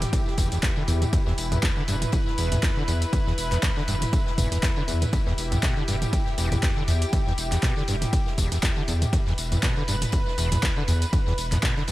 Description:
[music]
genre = acid house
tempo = 120 BPM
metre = 4/4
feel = swing 56% on 16ths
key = E minor pentatonic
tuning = A4 = 440 Hz
[part]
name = lush unison pad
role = sustained chords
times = 0.0-11.9 s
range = E3 to B4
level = -32 LUFS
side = equal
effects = chorus, sidechain pumping
[part]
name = saturated sub bass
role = bass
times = 0.0-11.9 s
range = E1 to E2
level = -27 LUFS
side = equal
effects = sidechain pumping
[part]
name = punchy analog drum machine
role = drums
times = 0.0-11.9 s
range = handclaps, hi-hat, ride cymbal, tambourine, toms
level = -29 LUFS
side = equal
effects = tape echo
[part]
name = warm soul drum kit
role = drums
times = 0.0-11.9 s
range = ride cymbal, snare drum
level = -42 LUFS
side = left 2 dB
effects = none
[part]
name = acid bass, saw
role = riff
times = 0.1-11.9 s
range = E1 to D3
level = -28 LUFS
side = equal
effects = overdrive, ensemble chorus, cassette tape, sidechain pumping, tape echo
[part]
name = electronic kick drum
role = drums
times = 0.1-11.7 s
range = none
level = -25 LUFS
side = equal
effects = none
[sound]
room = light reverb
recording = echo-heavy mix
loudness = -22 LUFS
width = side -16 dB against mid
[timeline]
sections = 0.0-11.9 A section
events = none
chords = 0.0 Em

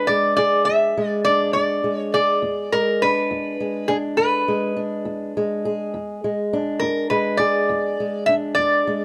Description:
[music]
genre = acoustic country blues, solo or duo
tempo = 68 BPM (dotted quarters)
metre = 12/8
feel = straight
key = E mixolydian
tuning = A4 = 440 Hz
[part]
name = lap resonator guitar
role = melody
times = 0.0-9.0 s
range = G#4 to E5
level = -22 LUFS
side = equal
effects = none
[part]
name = fingerpicked old ladder-braced acoustic guitar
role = accompaniment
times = 0.0-9.0 s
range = E2 to G#4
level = -26 LUFS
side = equal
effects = none
[sound]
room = small room ambience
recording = dry, close 1970s-style studio recording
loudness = -21 LUFS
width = mono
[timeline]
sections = 0.0-9.0 A section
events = none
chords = 0.0 E7

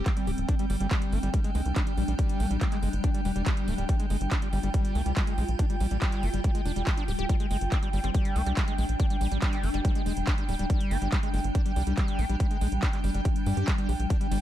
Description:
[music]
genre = psychedelic trance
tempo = 141 BPM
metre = 4/4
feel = straight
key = G phrygian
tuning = A4 = 439 Hz
[part]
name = swarming drone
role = sustained chords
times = 0.0-14.4 s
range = G3 to F4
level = -34 LUFS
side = left 2 dB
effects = built-in reverb, sidechain pumping
[part]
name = screaming distorted acid line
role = riff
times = 0.0-14.4 s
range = G3 to G4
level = -36 LUFS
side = moving between left 4 dB and right 3 dB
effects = distortion, chorus, auto-pan, cassette tape, sidechain pumping, dub echo
[part]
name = tight sequencer bass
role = bass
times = 0.0-14.4 s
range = D1 to G2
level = -28 LUFS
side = equal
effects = none
[part]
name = airy breathy pad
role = texture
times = 0.0-14.4 s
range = G5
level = -37 LUFS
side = right 1 dB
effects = chorus, sidechain pumping
[part]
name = big-room dance drum kit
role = drums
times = 0.1-14.4 s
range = handclaps, hi-hat, ride cymbal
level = -37 LUFS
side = right 1 dB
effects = none
[part]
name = electronic kick drum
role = drums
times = 0.1-14.2 s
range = none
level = -27 LUFS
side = equal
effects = none
[part]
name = resonant blip pluck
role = second line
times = 8.0-10.1 s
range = G3 to C4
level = -44 LUFS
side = right 3 dB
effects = phaser, ensemble chorus, sidechain pumping, high-pass filter, digital delay
[sound]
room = little or no reverb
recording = dark, warm production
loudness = -25 LUFS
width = side -12 dB against mid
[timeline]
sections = 0.0-14.4 A section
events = none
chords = 0.0 G5

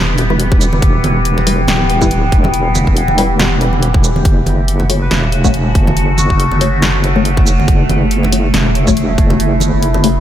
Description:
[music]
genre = deep dubstep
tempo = 140 BPM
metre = 4/4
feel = swing 57% on 16ths, half-time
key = unclear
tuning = A4 = 440 Hz
[part]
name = overtone-sweeping drone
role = sustained chords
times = 0.0-10.2 s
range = C#3 to G4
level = -18 LUFS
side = right 1 dB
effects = chorus, built-in reverb
[part]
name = deep soft wobble bass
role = bass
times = 0.0-10.2 s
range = D1 to F#1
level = -15 LUFS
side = equal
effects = chorus
[part]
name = deep house drum kit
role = drums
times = 0.2-10.1 s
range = hi-hat, shaker, snare drum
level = -20 LUFS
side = equal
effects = none
[part]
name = congas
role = percussion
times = 0.2-10.0 s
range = none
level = -21 LUFS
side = right 1 dB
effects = none
[part]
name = filtered dub chord stab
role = stabs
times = 0.3-10.1 s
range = G3 to C#5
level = -21 LUFS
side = left 4 dB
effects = phaser, lush chorus, cassette tape, dub echo
[part]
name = electronic kick drum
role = drums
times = 0.5-9.3 s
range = none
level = -13 LUFS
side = equal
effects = none
[part]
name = melodica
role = melody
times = 5.0-6.8 s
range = F#4 to B4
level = -26 LUFS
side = left 4 dB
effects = dub echo
[sound]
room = light reverb, digital ambience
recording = none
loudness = -10 LUFS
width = side -11 dB against mid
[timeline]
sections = 0.0-10.2 A section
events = kick drops out 9.4-10.2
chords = 0.0 Em; 4.3 F#m

